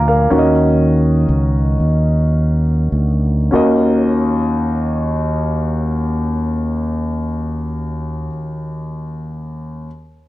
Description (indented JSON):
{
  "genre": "slow gospel",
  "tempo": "31-44 BPM (dotted quarters)",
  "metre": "6/8",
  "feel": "straight",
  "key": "Eb minor",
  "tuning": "A4 = 439 Hz",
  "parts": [
    { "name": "warm concert grand piano", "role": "accompaniment", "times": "0.0-9.9 s", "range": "Eb2 to D6", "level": "-18 LUFS", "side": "left 1 dB", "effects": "none" },
    { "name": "fingered electric bass", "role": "bass", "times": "0.0-8.3 s", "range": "Db2 to Eb2", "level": "-16 LUFS", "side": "equal", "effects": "none" }
  ],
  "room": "moderate large studio reverb, RT60 1.4 s, studio reverb",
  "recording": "dark, warm production",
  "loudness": "-14 LUFS",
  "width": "side -16 dB against mid",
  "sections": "0.0-3.5 A section; 3.5-7.4 B section",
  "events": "slowing down 0.0-3.5",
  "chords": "0.3 Ebm7"
}